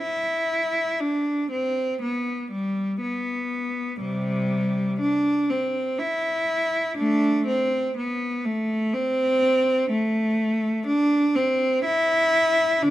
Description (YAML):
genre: classical, baroque-style suite movement for unaccompanied cello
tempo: 61 BPM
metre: 3/4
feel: rubato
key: C major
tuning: A4 = 439 Hz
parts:
  - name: clear cello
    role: solo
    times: 0.0-12.9 s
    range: C3 to E4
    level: -21 LUFS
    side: equal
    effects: none
room: light reverb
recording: close, detailed microphones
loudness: -21 LUFS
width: side -14 dB against mid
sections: 0.0-12.9 A section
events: none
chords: none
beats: 0.02 | 1.01 2.01 3.00 | 3.99 4.99 5.99 | 6.97 7.96 8.93 | 9.90 10.86 11.84 | 12.82